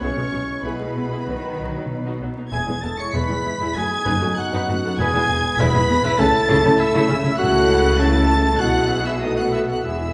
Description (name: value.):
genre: quick classical-period movement for symphony orchestra.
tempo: 97 BPM.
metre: 4/4.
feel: rubato.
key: E major.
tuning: A4 = 441 Hz.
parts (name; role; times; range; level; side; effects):
rich studio violin section; melody; 0.0-10.1 s; B5 to C#7; -31 LUFS; equal; none.
clear oboe; second line; 0.0-10.1 s; B4 to C#6; -31 LUFS; equal; none.
mellow clarinet; second line; 0.0-10.1 s; B3 to C#5; -28 LUFS; equal; none.
mellow hollow silver concert flute; second line; 0.0-10.1 s; B4 to C#6; -30 LUFS; equal; none.
rich studio violin section; second line; 0.0-10.1 s; B4 to C#6; -33 LUFS; equal; none.
rich studio viola section; accompaniment; 0.0-10.1 s; F#3 to B4; -28 LUFS; equal; none.
warm French horn section; sustained chords; 0.0-10.1 s; F#3 to F#4; -30 LUFS; equal; none.
rich studio cello section; bass; 0.0-10.1 s; E2 to D#3; -27 LUFS; equal; none.
rich studio double bass section; bass; 0.0-10.1 s; E1 to C#2; -28 LUFS; equal; none.
room: wet recital hall reverb, RT60 1.5 s.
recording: recorded in a church or concert hall, vinyl crackle, nothing above 10.8 kHz.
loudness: -20 LUFS.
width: mono.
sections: 0.0-10.1 A section.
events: none.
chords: 0.0 E/B; 1.3 B; 2.5 E; 3.8 B7/F#; 5.0 E; 6.2 A/C#; 8.6 E/B; 9.2 B5.